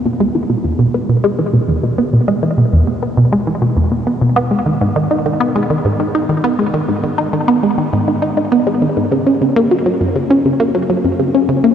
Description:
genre	ambient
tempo	101 BPM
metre	4/4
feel	straight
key	E lydian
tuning	A4 = 438 Hz
part	resonant blip pluck	solo	0.1-11.7 s	E2 to D#4	-12 LUFS	equal	phaser, tape echo
room	wet huge ambient reverb, RT60 7.9 s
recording	worn, warbling old tape, cassette tape, warbly pitch drift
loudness	-12 LUFS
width	side -8 dB against mid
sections	0.0-11.7 A section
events	none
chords	none

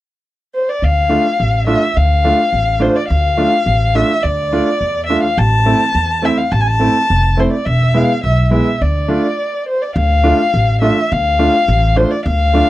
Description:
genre	klezmer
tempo	105 BPM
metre	2/4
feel	straight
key	D minor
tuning	A4 = 438 Hz
part	dark violin	melody	0.5-12.7 s	C5 to A5	-16 LUFS	left 2 dB	none
part	upright bass	bass	0.8-12.6 s	E1 to E2	-15 LUFS	equal	none
part	bright upright piano	accompaniment	1.1-12.7 s	G#3 to F4	-16 LUFS	right 2 dB	none
room	little or no reverb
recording	dry, close 1970s-style studio recording, lossy compression artefacts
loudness	-12 LUFS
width	side -15 dB against mid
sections	0.8-10.0 A section; 10.0-12.7 A section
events	stop 9.4-10.0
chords	0.0 N.C.; 0.8 Dm; 5.4 Am; 7.7 E; 8.8 Dm

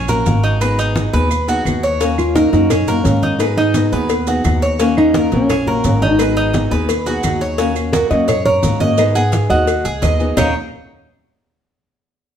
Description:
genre	latin, Cuban son and guajira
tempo	172 BPM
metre	4/4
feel	straight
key	Eb minor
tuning	A4 = 441 Hz
part	Cuban tres	arpeggios	0.0-10.5 s	Db4 to Eb5	-20 LUFS	right 2 dB	none
part	upright bass	bass	0.0-10.5 s	Ab1 to Ab2	-19 LUFS	equal	none
part	fingerpicked old ladder-braced acoustic guitar	accompaniment	0.1-10.5 s	Eb3 to Ab4	-21 LUFS	left 3 dB	none
part	congas	percussion	0.1-10.5 s	none	-23 LUFS	equal	none
part	maracas	percussion	0.1-10.5 s	none	-33 LUFS	right 6 dB	none
part	claves	percussion	0.6-10.5 s	none	-32 LUFS	right 5 dB	none
part	cowbell and bongos	percussion	2.0-10.5 s	none	-24 LUFS	left 6 dB	none
part	nylon-string guitar	melody	2.2-10.5 s	Cb4 to Gb5	-17 LUFS	right 1 dB	none
room	moderate large studio reverb, RT60 1.0 s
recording	heard from further back in the room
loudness	-13 LUFS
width	side -9 dB against mid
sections	0.0-7.6 A section; 7.6-10.4 B section; 10.4-11.8 C section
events	none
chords	0.0 Ebm7; 0.6 Abm7; 2.0 Ebm7; 3.4 Abm7; 4.8 Ebm7; 6.2 Abm7; 7.6 Ebm7; 9.0 Abm7; 10.4 Eb7(no3)

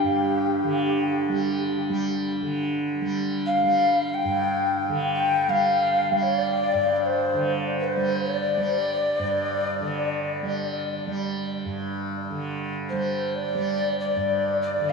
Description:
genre	world meditative, free-time meditation music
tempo	free time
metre	none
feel	none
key	unclear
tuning	A4 = 440 Hz
part	breathy mellow Native American-style cedar flute	melody	0.0-14.9 s	G4 to G5	-24 LUFS	left 1 dB	tape echo
part	tanpura	drone	0.0-14.9 s	G2 to G3	-29 LUFS	right 3 dB	none
part	bronze singing bowl	texture	0.0-2.9 s	D4	-31 LUFS	left 1 dB	none
room	wet cathedral reverb, RT60 7.0 s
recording	in a vast, echoing space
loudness	-22 LUFS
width	side -4 dB against mid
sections	0.0-2.4 A section; 2.4-14.9 A section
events	none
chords	none

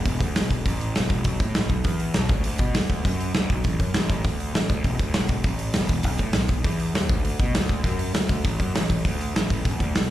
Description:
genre	punk rock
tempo	200 BPM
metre	4/4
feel	straight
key	unclear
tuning	A4 = 440 Hz
part	fuzz picked electric bass	bass	0.0-10.1 s	E1 to B2	-25 LUFS	equal	overdrive
part	big rock drum kit	drums	0.1-10.0 s	hi-hat, kick drum, snare drum	-23 LUFS	equal	none
room	little or no reverb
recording	live gig heard through the venue's PA, club reverb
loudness	-21 LUFS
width	side -13 dB against mid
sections	0.0-10.1 A section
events	none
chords	none

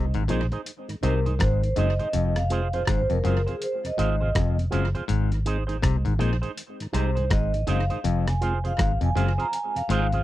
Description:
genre	roots reggae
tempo	81 BPM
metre	4/4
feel	swing 62% on 16ths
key	Ab mixolydian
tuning	A4 = 440 Hz
part	clav	riff	0.0-10.1 s	F2 to C3	-29 LUFS	left 7 dB	none
part	vintage muted fingered electric bass	bass	0.0-10.2 s	F1 to C2	-24 LUFS	equal	none
part	mellow tonewheel organ	accompaniment	0.1-10.2 s	F2 to F4	-35 LUFS	left 1 dB	chorus vibrato, slow rotary speaker, tape echo
part	dusty soul sampler-style drum kit	drums	0.1-10.2 s	hi-hat, kick drum, rim click	-29 LUFS	equal	overdrive, tape echo
part	electric guitar with an envelope filter	accompaniment	0.3-10.2 s	Eb4 to C5	-32 LUFS	right 6 dB	tape echo
part	vibraphone with soft mallets	melody	1.0-10.2 s	Ab4 to Bb5	-29 LUFS	right 2 dB	tape echo
room	little or no reverb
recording	dry, close 1970s-style studio recording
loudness	-22 LUFS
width	side -15 dB against mid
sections	0.0-10.2 A section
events	vibraphone solo 0.0-10.2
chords	0.0 Ab; 2.1 Fm; 5.1 Ab; 8.0 Fm

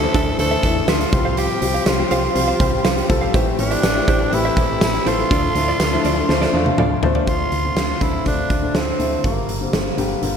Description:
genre	1980s-style pop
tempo	122 BPM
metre	4/4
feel	straight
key	D minor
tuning	A4 = 440 Hz
part	raspy tenor saxophone	melody	0.0-9.7 s	Bb3 to A4	-23 LUFS	right 2 dB	slapback echo
part	warm grand piano	accompaniment	0.0-10.4 s	D3 to C5	-22 LUFS	left 3 dB	slapback echo
part	dark studio string section	sustained chords	0.0-7.3 s	C3 to A4	-28 LUFS	equal	none
part	direct-recorded clean electric guitar	riff	0.0-7.3 s	D4 to F5	-26 LUFS	right 4 dB	wide subtle chorus, slapback echo
part	solid FM bass	bass	0.0-10.4 s	G1 to E2	-24 LUFS	right 1 dB	none
part	big rock drum kit	drums	0.1-10.3 s	hi-hat, kick drum, snare drum, tambourine, toms	-20 LUFS	equal	none
room	moderate lush hall reverb, RT60 2.2 s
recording	big arena sound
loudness	-16 LUFS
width	side -7 dB against mid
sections	0.0-7.3 A section; 7.3-10.4 B section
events	drum fill 6.3-7.3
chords	0.0 Dsus2; 1.1 Csus4; 3.3 Am7; 5.3 Dm7; 9.2 Gm7

